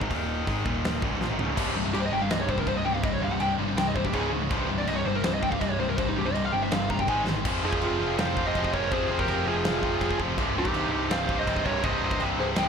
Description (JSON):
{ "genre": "heavy metal", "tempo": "164 BPM", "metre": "4/4", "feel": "straight", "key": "C phrygian", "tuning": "A4 = 439 Hz", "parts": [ { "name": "scooped high-gain guitar", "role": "riff", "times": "0.0-12.7 s", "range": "C2 to Ab3", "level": "-32 LUFS", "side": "right 11 dB", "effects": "distortion" }, { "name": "tight distorted guitar", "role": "riff", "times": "0.0-12.7 s", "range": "C2 to Ab3", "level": "-32 LUFS", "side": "left 15 dB", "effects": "distortion" }, { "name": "overdriven picked electric bass", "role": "bass", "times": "0.0-12.7 s", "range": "C1 to Bb1", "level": "-33 LUFS", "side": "equal", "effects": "none" }, { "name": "big rock drum kit", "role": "drums", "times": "0.0-12.7 s", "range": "china cymbal, crash cymbal, hi-hat, kick drum, snare drum, toms", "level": "-31 LUFS", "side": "right 1 dB", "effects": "none" }, { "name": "pipe organ, trumpet", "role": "sustained chords", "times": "1.6-12.7 s", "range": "C3 to G5", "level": "-40 LUFS", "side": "equal", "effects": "none" }, { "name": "high-gain distorted guitar", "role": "riff", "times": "1.6-12.7 s", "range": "C2 to Ab3", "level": "-33 LUFS", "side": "left 1 dB", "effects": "distortion" }, { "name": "high-gain lead guitar", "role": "melody", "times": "1.9-12.7 s", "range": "Eb4 to Bb5", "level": "-30 LUFS", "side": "equal", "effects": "distortion" }, { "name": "high-gain lead guitar", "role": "second line", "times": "7.7-12.7 s", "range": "Eb4 to Eb5", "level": "-33 LUFS", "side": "right 3 dB", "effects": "distortion" } ], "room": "moderate studio reverb, RT60 0.7 s", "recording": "none", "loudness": "-24 LUFS", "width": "side -6 dB against mid", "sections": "0.0-1.6 A section; 1.6-7.5 B section; 7.5-12.7 C section", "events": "drum fill 1.2-1.6, 7.3; lead electric guitar solo 1.6-7.5", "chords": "0.1 Eb5; 0.5 Ab5; 0.7 Eb5; 1.0 Cm; 4.1 Db5; 4.5 Cm; 7.1 Ab5; 7.5 Fm; 10.4 Cm" }